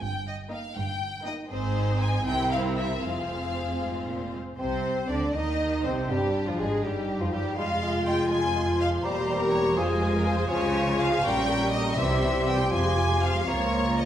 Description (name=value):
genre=quick classical-period movement for symphony orchestra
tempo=81 BPM (dotted quarters)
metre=6/8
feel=rubato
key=F minor, C minor from 4.6 s, F minor from 10.5 s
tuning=A4 = 438 Hz
part: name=rich studio violin section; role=melody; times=0.0-14.1 s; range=F4 to E6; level=-35 LUFS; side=left 3 dB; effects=none
part: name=warm studio cello section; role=bass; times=0.0-14.1 s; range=Db2 to Eb3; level=-32 LUFS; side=right 1 dB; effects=none
part: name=warm studio double bass section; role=bass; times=0.0-14.1 s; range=E1 to Eb2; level=-33 LUFS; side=right 2 dB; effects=none
part: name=rich studio violin section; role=second line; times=0.5-14.1 s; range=F4 to Ab5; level=-31 LUFS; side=left 2 dB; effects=none
part: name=warm studio viola section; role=accompaniment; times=0.5-14.1 s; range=E3 to Bb4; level=-32 LUFS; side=right 1 dB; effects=none
part: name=hollow concert flute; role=second line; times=4.6-14.1 s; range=F4 to Db6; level=-35 LUFS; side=left 1 dB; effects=none
part: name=warm bassoon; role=accompaniment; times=4.6-14.1 s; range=F3 to Eb4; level=-33 LUFS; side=right 1 dB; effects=none
part: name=dark French horn section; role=sustained chords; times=4.6-14.1 s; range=F3 to G4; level=-30 LUFS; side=left 1 dB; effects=none
part: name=clear clarinet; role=second line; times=5.3-14.1 s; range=D4 to Ab4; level=-33 LUFS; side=left 1 dB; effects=none
part: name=timpani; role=percussion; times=12.0-12.7 s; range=C3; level=-33 LUFS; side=equal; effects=none
room=wet recital hall reverb, RT60 1.5 s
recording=recorded in a church or concert hall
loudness=-24 LUFS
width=side -10 dB against mid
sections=0.0-4.6 A section; 4.6-14.1 B section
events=none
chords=0.0 Eb/G; 1.5 Ab; 2.3 C7; 3.0 Fm; 4.6 Cm; 6.1 G5; 6.8 Ebadd9/G; 7.6 Fm; 9.0 C7/E; 9.8 Fm; 10.5 Db; 11.2 Gdim/Bb; 12.0 C; 12.7 Fm; 13.5 Bbm/Db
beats=| 0.02 0.77 | 1.50 2.26 | 3.03 3.81 | 4.58 5.34 | 6.09 6.84 | 7.58 8.30 | 9.04 9.77 | 10.51 11.24 | 11.97 12.71 | 13.46